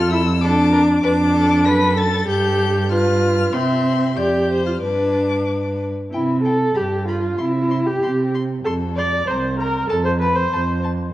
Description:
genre	quick classical-period movement for string quartet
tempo	96 BPM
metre	2/4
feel	straight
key	C major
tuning	A4 = 440 Hz
part	dark violin	melody	0.0-10.8 s	E4 to B6	-28 LUFS	left 8 dB	none
part	rich violin	second line	0.0-10.9 s	A4 to C6	-25 LUFS	left 2 dB	none
part	warm viola	accompaniment	0.0-10.8 s	C4 to D5	-19 LUFS	equal	none
part	dark cello	bass	0.0-11.1 s	C2 to C3	-21 LUFS	right 2 dB	none
room	wet recital hall reverb, RT60 1.7 s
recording	worn, warbling old tape, cassette tape, warbly pitch drift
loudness	-16 LUFS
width	side -15 dB against mid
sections	0.0-6.1 A section; 6.1-11.1 B section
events	none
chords	0.0 Dm/F; 1.7 F#madd11; 2.3 G7; 3.5 C; 4.2 Dm/F; 4.8 G; 6.1 C; 6.8 G7(no3); 7.4 C; 8.7 F; 9.3 Bbsus2/C; 9.9 F

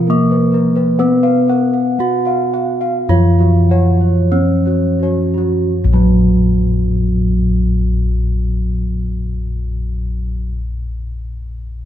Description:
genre	Javanese gamelan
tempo	40-69 BPM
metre	4/4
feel	straight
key	unclear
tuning	A4 = 440 Hz
part	gamelan-type bronze metallophone	melody	0.0-10.5 s	Gb3-20c to Gb4-20c	-19 LUFS	left 1 dB	none
part	gamelan-type bronze metallophone	accompaniment	0.0-10.5 s	F3-30c to Cb4+20c	-18 LUFS	right 2 dB	none
part	gamelan-type bronze metallophone	arpeggios	0.0-10.5 s	Gb4-20c to Gb5-20c	-23 LUFS	right 6 dB	none
part	gamelan-type bossed gongs	bass	0.0-10.4 s	Bb1 to Cb5+20c	-17 LUFS	left 1 dB	none
part	gamelan-type bossed gongs	arpeggios	0.3-10.5 s	Gb4-20c to Gb5-20c	-25 LUFS	left 5 dB	none
room	moderate recital hall reverb, RT60 1.8 s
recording	close, detailed microphones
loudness	-13 LUFS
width	side -11 dB against mid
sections	0.0-5.7 A section; 5.7-11.7 B section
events	slowing down 0.0-5.7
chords	none

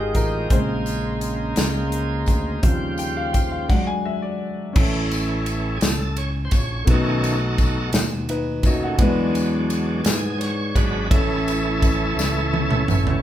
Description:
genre	slow gospel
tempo	57 BPM (dotted quarters)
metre	6/8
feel	straight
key	A major from 4.8 s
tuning	A4 = 438 Hz
part	warm baby grand piano	accompaniment	0.0-13.2 s	A2 to G#5	-26 LUFS	left 1 dB	none
part	bright tonewheel organ	sustained chords	0.0-13.2 s	Db3 to G5	-26 LUFS	right 2 dB	slow rotary speaker, overdrive
part	warm woodwind section	sustained chords	0.0-3.7 s	Eb5 to Eb6	-33 LUFS	right 2 dB	none
part	modern bright fingered electric bass	bass	0.0-13.2 s	Ab1 to G#2	-26 LUFS	equal	none
part	modern studio drum kit	drums	0.1-13.2 s	crash cymbal, hi-hat, kick drum, ride cymbal, snare drum, toms	-21 LUFS	equal	none
part	tambourine	percussion	0.2-13.2 s	none	-34 LUFS	left 5 dB	none
room	moderate large studio reverb, RT60 0.9 s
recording	band playing live in one room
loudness	-19 LUFS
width	side -12 dB against mid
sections	0.0-4.8 A section; 4.8-13.2 B section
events	grand piano solo 0.0-4.8; tonewheel organ solo 4.8-13.2; drum fill 12.2-13.2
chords	0.0 Fm9; 0.5 Bbm9; 2.6 Eb13; 3.7 E9/F#; 4.8 A; 6.9 B7; 9.0 E7; 11.1 A

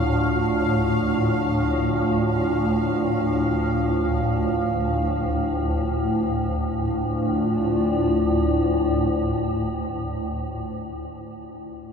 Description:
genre	dark ambient drone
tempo	free time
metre	none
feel	none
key	D minor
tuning	A4 = 440 Hz
part	dark analog pad	sustained chords	0.0-11.1 s	A3 to D5	-25 LUFS	equal	chorus
part	swarming drone	drone	0.0-10.6 s	D2 to A2	-23 LUFS	equal	built-in reverb
part	bubbling stepped-filter texture	texture	0.0-6.3 s	F5	-32 LUFS	right 1 dB	chorus, built-in reverb
room	wet huge ambient reverb, RT60 7.8 s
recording	in a vast, echoing space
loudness	-20 LUFS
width	side -6 dB against mid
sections	0.0-6.3 A section; 6.3-10.8 B section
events	none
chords	0.0 Dm

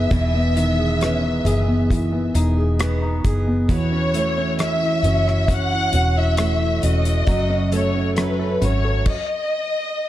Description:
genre	pop ballad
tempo	67 BPM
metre	4/4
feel	straight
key	E major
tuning	A4 = 439 Hz
part	warm symphonic violin section	melody	0.0-10.1 s	B4 to F#5	-23 LUFS	left 1 dB	digital delay
part	warm concert grand piano	accompaniment	0.0-9.1 s	B2 to B4	-24 LUFS	equal	none
part	picked steel-string acoustic guitar	arpeggios	0.0-9.2 s	F#2 to G#4	-26 LUFS	right 3 dB	none
part	vintage muted fingered electric bass	bass	0.0-9.0 s	E1 to G#1	-21 LUFS	equal	none
part	damped 70s drum kit	drums	0.1-9.3 s	crash cymbal, hi-hat, kick drum, rim click	-23 LUFS	equal	none
room	light reverb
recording	dark, warm production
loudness	-17 LUFS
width	side -13 dB against mid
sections	0.0-10.1 A section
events	stop 9.1-10.1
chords	0.0 Emaj7; 3.7 A6/E; 7.3 F#m; 9.1 N.C.

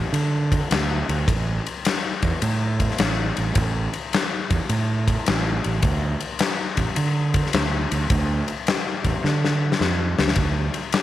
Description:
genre	blues rock power trio and southern rock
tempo	106 BPM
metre	4/4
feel	swing 67% on 8ths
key	unclear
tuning	A4 = 440 Hz
part	fuzz fingered electric bass	bass	0.0-10.7 s	A1 to D3	-23 LUFS	right 2 dB	overdrive
part	huge arena drum kit	drums	0.1-11.0 s	kick drum, ride cymbal, snare drum	-22 LUFS	left 2 dB	none
room	light reverb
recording	1960s-style stereo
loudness	-20 LUFS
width	side -13 dB against mid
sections	0.0-10.4 A section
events	drum fill 9.2-10.4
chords	none

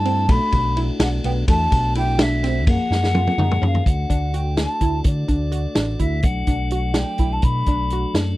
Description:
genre	progressive instrumental, band music in an uneven meter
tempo	252 BPM (eighths)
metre	5/8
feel	straight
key	unclear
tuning	A4 = 440 Hz
part	breathy mellow jazz flute	melody	0.0-8.2 s	D5 to B5	-25 LUFS	left 1 dB	none
part	tonewheel organ	accompaniment	0.0-8.4 s	E#3 to G#4	-29 LUFS	left 4 dB	stopped rotary speaker
part	picked electric bass	bass	0.0-8.3 s	A1 to D3	-22 LUFS	equal	none
part	glassy wavetable pluck	arpeggios	0.1-8.3 s	A3 to F#4	-27 LUFS	right 2 dB	chorus
part	vintage drum kit	drums	0.1-8.3 s	hi-hat, kick drum, ride cymbal, snare drum, toms	-20 LUFS	equal	none
room	little or no reverb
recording	dry, close 1970s-style studio recording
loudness	-17 LUFS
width	side -17 dB against mid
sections	0.0-3.9 A section; 3.9-8.4 B section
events	drum fill 2.9-3.9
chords	0.3 Bm7; 1.5 E9sus4; 2.7 F#maj9; 3.9 D; 6.2 Bm7

